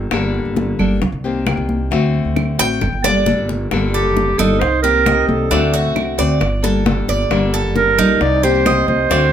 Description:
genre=latin, Cuban son and guajira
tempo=134 BPM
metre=4/4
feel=straight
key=G minor, G harmonic minor from 3.7 s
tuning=A4 = 441 Hz
part: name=nylon-string guitar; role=accompaniment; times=0.0-9.3 s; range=D3 to A4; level=-20 LUFS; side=left 4 dB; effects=none
part: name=upright bass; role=bass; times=0.0-9.3 s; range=F#1 to D2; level=-20 LUFS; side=right 1 dB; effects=none
part: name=bongos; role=percussion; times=0.1-9.3 s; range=none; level=-24 LUFS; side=left 5 dB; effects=none
part: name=claves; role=percussion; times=0.1-8.9 s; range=none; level=-29 LUFS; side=right 5 dB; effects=none
part: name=congas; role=percussion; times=0.1-9.3 s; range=none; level=-22 LUFS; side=right 1 dB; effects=none
part: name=Cuban tres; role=arpeggios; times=2.6-9.3 s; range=D4 to G5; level=-20 LUFS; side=right 2 dB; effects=none
part: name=warm clarinet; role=melody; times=3.9-9.3 s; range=G4 to D5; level=-16 LUFS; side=right 3 dB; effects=none
room=moderate studio reverb, RT60 0.5 s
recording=none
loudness=-14 LUFS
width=side -9 dB against mid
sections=0.0-3.7 A section; 3.7-9.3 B section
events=Cuban tres solo 0.0-3.7; drum fill 2.8-3.7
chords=0.0 Gmadd9; 1.0 Cm7; 1.9 D7; 2.8 Gmadd9; 4.6 Cm7; 5.5 D7; 6.4 Gmadd9; 8.2 Cm7

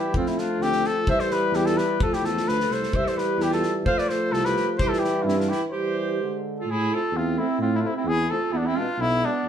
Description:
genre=balkan folk, Balkan brass band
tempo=129 BPM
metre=2/4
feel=straight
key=C major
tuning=A4 = 440 Hz
part: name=warm cornet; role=melody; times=0.0-9.5 s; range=D4 to F5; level=-26 LUFS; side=left 3 dB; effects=none
part: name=bright clarinet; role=second line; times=0.0-9.5 s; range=B3 to C5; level=-28 LUFS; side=right 6 dB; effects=none
part: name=mellow euphonium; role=accompaniment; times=0.0-9.3 s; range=G3 to A3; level=-30 LUFS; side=left 2 dB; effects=none
part: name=warm trombone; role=accompaniment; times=0.0-9.3 s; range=B2 to F3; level=-30 LUFS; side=right 2 dB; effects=none
part: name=mellow tuba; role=bass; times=0.1-9.5 s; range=B1 to A2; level=-28 LUFS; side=equal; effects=none
part: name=loose indie drum kit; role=percussion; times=0.1-5.6 s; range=kick drum, snare drum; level=-30 LUFS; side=equal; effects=none
room=wet studio reverb, RT60 0.8 s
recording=band playing live in one room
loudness=-21 LUFS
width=side -8 dB against mid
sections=0.0-6.7 A section; 6.7-9.5 B section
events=break 5.7-6.7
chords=0.1 F; 1.1 C; 2.0 F; 2.9 C; 3.9 F; 4.8 C; 6.2 D7(b5, no3); 6.7 Am; 8.5 E

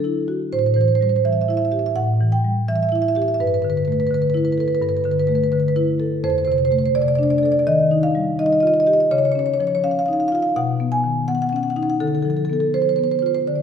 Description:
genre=classical, contemporary piece for solo marimba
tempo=84 BPM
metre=4/4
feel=rubato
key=unclear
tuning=A4 = 440 Hz
part: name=marimba with soft mallets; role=solo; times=0.0-13.6 s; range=F2 to G#5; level=-17 LUFS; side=equal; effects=none
room=wet recital hall reverb, RT60 1.4 s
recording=recorded in a church or concert hall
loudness=-17 LUFS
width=side -7 dB against mid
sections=0.0-13.6 A section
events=none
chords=0.0 Dadd9; 0.5 Am7; 3.4 G69; 6.2 F6; 7.7 D#add9; 9.1 C#add9; 10.6 Badd9; 12.0 Dm6

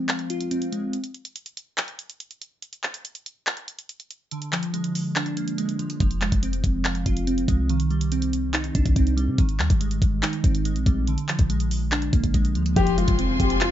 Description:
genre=hip hop, trap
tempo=142 BPM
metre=4/4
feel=half-time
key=unclear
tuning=A4 = 440 Hz
part: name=glassy digital keys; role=accompaniment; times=0.0-1.0, 4.3-13.7 s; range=D3 to F5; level=-26 LUFS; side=right 1 dB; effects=chorus, low-pass filter
part: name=trap drum kit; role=drums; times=0.1-13.7 s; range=handclaps, hi-hat, kick drum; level=-25 LUFS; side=equal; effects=none
part: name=clean 808-style bass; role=bass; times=6.0-13.7 s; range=F1 to C3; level=-24 LUFS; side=equal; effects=none
part: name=dark baby grand piano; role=melody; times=12.8-13.7 s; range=F4 to G4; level=-25 LUFS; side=left 5 dB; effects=low-pass filter
part: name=muted studio string section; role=sustained chords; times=12.8-13.7 s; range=F4 to C6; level=-28 LUFS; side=left 1 dB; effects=none
part: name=impact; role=sound effects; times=12.8-13.7 s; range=none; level=-30 LUFS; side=equal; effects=none
room=light reverb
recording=nothing above 7.6 kHz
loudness=-21 LUFS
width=side -11 dB against mid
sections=0.0-12.8 A section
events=break 0.0-6.0; impact 12.8-13.7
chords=0.0 Fm; 0.9 N.C.; 4.3 Bb7; 6.0 Fm; 7.7 Cmadd9; 9.4 Abmaj7; 11.1 Bb7; 12.8 Fm

